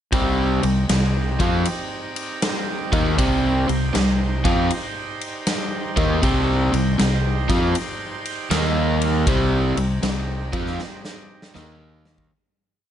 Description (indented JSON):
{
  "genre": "blues rock power trio and southern rock",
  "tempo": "79 BPM",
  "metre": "4/4",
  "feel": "swing 66% on 8ths",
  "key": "C minor",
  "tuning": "A4 = 440 Hz",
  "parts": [
    { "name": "overdriven tonewheel organ", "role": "sustained chords", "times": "0.1-12.3 s", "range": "Bb3 to C5", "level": "-31 LUFS", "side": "right 4 dB", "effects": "slow rotary speaker" },
    { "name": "crunchy overdriven guitar", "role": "riff", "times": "0.1-12.3 s", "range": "C3 to F4", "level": "-21 LUFS", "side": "equal", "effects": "none" },
    { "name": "fuzz fingered electric bass", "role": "bass", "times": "0.1-12.3 s", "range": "C2 to F2", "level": "-24 LUFS", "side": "equal", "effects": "overdrive" },
    { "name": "huge arena drum kit", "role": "drums", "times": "0.1-12.3 s", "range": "kick drum, ride cymbal, snare drum", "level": "-25 LUFS", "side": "equal", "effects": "none" }
  ],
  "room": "studio ambience",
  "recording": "nothing above 10.6 kHz",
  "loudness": "-19 LUFS",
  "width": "side -10 dB against mid",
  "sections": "0.1-12.3 riff",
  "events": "fade-out 9.3-12.3; drum fill 10.8-12.3",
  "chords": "0.1 Cm; 8.5 Eb5; 9.3 Cm; 11.6 Eb5"
}